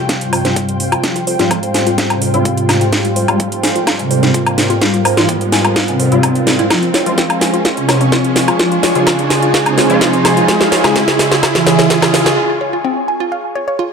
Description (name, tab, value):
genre	melodic techno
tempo	127 BPM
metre	4/4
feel	straight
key	F harmonic minor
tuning	A4 = 440 Hz
part	deep dark ambient pad	sustained chords	0.7-12.3 s	Ab4 to Ab5	-23 LUFS	right 2 dB	chorus, built-in reverb, sidechain pumping
part	woody wave-folded pluck	arpeggios	0.0-13.8 s	C4 to Ab5	-21 LUFS	left 2 dB	chorus, sidechain pumping, dub echo
part	sync-sweep polysynth	stabs	0.0-12.4 s	Ab2 to Ab4	-18 LUFS	equal	chorus, vintage 12-bit sampler grit, sidechain pumping, dub echo
part	fat analog bass	bass	0.0-12.3 s	F1 to F2	-29 LUFS	equal	none
part	riser	sound effects	1.4-12.4 s	none	-22 LUFS	right 2 dB	none
part	ethereal airy pad	texture	0.0-12.4 s	F4 to Db6	-22 LUFS	right 1 dB	ensemble chorus, built-in reverb, sidechain pumping
part	electronic kick drum	drums	0.1-12.0 s	none	-24 LUFS	equal	none
part	house drum kit	drums	0.1-12.4 s	hi-hat, snare drum, woodblock	-15 LUFS	equal	none
part	mellow synth brass	melody	0.2-12.3 s	G2 to Ab4	-18 LUFS	right 1 dB	chorus, sidechain pumping, dub echo
room	moderate digital room reverb, RT60 1.2 s, digital ambience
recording	none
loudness	-11 LUFS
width	side -6 dB against mid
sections	0.0-13.9 A section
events	build-up 0.0-13.9; drum fill 0.0-12.4; filter sweep on synth pluck 0.0-13.9; filter sweep on analog polysynth 0.0-13.9; riser 1.4-12.4; break 12.4-13.9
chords	0.0 Fmadd9; 6.7 Db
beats	0.09 0.56 | 1.04 1.51 1.98 2.45 | 2.93 3.40 3.87 4.34 | 4.82 5.29 5.76 6.23 | 6.71 7.18 7.65 8.12 | 8.60 9.07 9.54 10.01 | 10.48 10.96 11.43 11.90 | 12.38 12.85 13.32 13.79